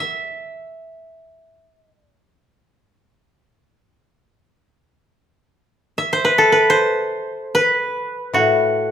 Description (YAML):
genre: japanese traditional, Japanese chamber music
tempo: free time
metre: none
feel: none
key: A kumoi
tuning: A4 = 439 Hz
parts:
  - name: koto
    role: melody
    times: 0.0-8.9 s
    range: A4 to F#5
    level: -16 LUFS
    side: equal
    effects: none
  - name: koto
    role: accompaniment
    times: 8.3-8.9 s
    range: A2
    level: -17 LUFS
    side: left 3 dB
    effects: none
room: moderate recital hall reverb, RT60 1.3 s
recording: minimal, uncompressed stereo recording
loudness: -15 LUFS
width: side -9 dB against mid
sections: 0.0-8.9 A section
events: slowing down 7.9-8.9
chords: none